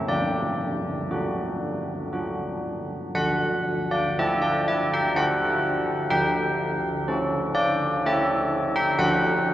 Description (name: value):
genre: classical, tune for church bells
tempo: 61 BPM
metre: 3/4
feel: uneven beats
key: D major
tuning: A4 = 439 Hz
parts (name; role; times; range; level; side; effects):
- old church bells; solo; 0.0-9.5 s; D3 to G5; -22 LUFS; equal; none
room: wet cathedral reverb, RT60 7.0 s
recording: worn, warbling old tape, cassette tape, warbly pitch drift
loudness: -22 LUFS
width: side -13 dB against mid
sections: 0.0-3.1 A section; 3.1-9.5 A section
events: none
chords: 0.1 D; 6.1 A7/D; 9.0 D